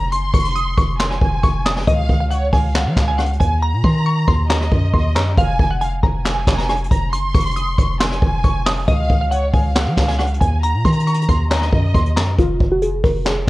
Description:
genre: hip hop, trap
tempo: 137 BPM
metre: 4/4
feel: half-time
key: F phrygian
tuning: A4 = 444 Hz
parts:
  - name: glassy wavetable pluck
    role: melody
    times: 0.0-13.5 s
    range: F4 to Eb6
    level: -23 LUFS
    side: equal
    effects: chorus, low-pass filter, ping-pong delay
  - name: warm studio violin section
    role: second line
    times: 0.0-12.3 s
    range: Db5 to C6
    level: -26 LUFS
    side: right 1 dB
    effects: ping-pong delay
  - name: warm 808-style bass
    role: bass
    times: 0.0-13.5 s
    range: F1 to F3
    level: -19 LUFS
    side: equal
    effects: none
  - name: jazz brush drum kit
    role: drums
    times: 0.1-13.4 s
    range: handclaps, hi-hat, kick drum, rim click, snare drum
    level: -18 LUFS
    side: equal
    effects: none
room: small room ambience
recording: worn, warbling old tape, cassette tape, warbly pitch drift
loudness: -15 LUFS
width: side -19 dB against mid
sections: 0.0-12.4 A section; 12.4-13.5 B section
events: hi-hats muted 3.6-5.4; filter sweep on synth pluck 12.4-13.5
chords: 0.0 Fm; 1.9 Db; 3.6 Ebm; 5.4 Fm; 8.9 Db; 10.6 Ebm; 12.4 F5

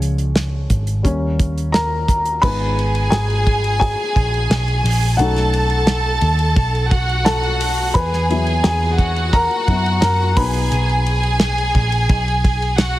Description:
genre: piano-driven pop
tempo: 87 BPM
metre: 4/4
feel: straight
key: G# minor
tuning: A4 = 440 Hz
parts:
  - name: dark upright piano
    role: accompaniment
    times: 0.0-13.0 s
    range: E#3 to B5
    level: -21 LUFS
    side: left 2 dB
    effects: none
  - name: vintage muted picked electric bass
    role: bass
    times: 0.0-13.0 s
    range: G#1 to F#2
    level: -19 LUFS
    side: equal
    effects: none
  - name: damped 70s drum kit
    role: drums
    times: 0.0-12.9 s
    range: crash cymbal, hi-hat, kick drum, ride cymbal, snare drum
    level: -20 LUFS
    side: equal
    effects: none
  - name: warm symphonic violin section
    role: second line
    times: 2.4-13.0 s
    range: F#4 to A5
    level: -21 LUFS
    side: right 1 dB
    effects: none
room: studio reverb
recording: heavily compressed radio sound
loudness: -15 LUFS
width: side -15 dB against mid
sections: 0.0-2.4 A section; 2.4-13.0 B section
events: upright piano solo 0.0-2.4, 2.4-13.0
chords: 0.0 C#; 1.0 D#7; 2.4 G#m; 5.2 B7; 7.9 Esus2; 10.4 B

